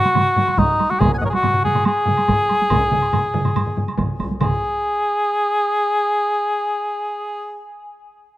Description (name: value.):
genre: japanese traditional, taiko drum ensemble.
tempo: 142 BPM.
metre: 4/4.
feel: straight.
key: unclear.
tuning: A4 = 439 Hz.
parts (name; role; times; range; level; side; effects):
warm cor anglais; melody; 0.0-7.6 s; Eb4 to Ab5; -18 LUFS; equal; none.
woodblock; percussion; 0.0-4.6 s; none; -30 LUFS; right 2 dB; none.
taiko ensemble; percussion; 0.1-4.6 s; none; -24 LUFS; right 2 dB; none.
taiko ensemble; percussion; 0.1-4.8 s; none; -24 LUFS; left 1 dB; none.
taiko ensemble; percussion; 0.2-4.8 s; none; -26 LUFS; right 3 dB; none.
taiko ensemble; percussion; 0.6-4.6 s; none; -25 LUFS; equal; none.
room: light reverb.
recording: rough home demo mix.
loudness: -16 LUFS.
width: side -15 dB against mid.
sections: 0.0-4.4 A section; 4.4-7.8 B section.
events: none.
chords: none.